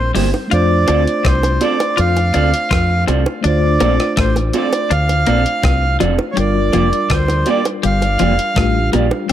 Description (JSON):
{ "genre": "lovers rock reggae", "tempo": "82 BPM", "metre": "4/4", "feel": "straight", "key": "unclear", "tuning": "A4 = 442 Hz", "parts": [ { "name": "accordion", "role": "melody", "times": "0.0-8.9 s", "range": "C5 to F5", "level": "-19 LUFS", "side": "right 3 dB", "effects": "tape echo" }, { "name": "mellow tine electric piano", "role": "accompaniment", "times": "0.0-9.3 s", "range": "G3 to C5", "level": "-22 LUFS", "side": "left 3 dB", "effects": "medium stereo tremolo" }, { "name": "fingered electric bass", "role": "bass", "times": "0.0-9.1 s", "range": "F1 to F2", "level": "-17 LUFS", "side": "equal", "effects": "none" }, { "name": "twelve-string electric guitar", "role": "riff", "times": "0.1-9.3 s", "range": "F3 to F4", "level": "-22 LUFS", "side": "left 8 dB", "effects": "none" }, { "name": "electric guitar through a small old amp", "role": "stabs", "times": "0.1-9.1 s", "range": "Bb3 to D5", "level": "-22 LUFS", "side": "right 4 dB", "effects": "warbly pitch drift" }, { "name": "crisp 8-bit digital drum machine", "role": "drums", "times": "0.2-9.3 s", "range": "hi-hat, kick drum, rim click", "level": "-21 LUFS", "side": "equal", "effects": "none" }, { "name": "bongos", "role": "percussion", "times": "0.2-9.3 s", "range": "none", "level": "-25 LUFS", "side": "right 3 dB", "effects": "tape echo" } ], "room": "light reverb", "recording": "none", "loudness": "-13 LUFS", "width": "side -11 dB against mid", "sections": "0.0-9.3 A section", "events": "none", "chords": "0.0 C7; 0.5 F6; 3.4 Dm7; 6.4 Gm7" }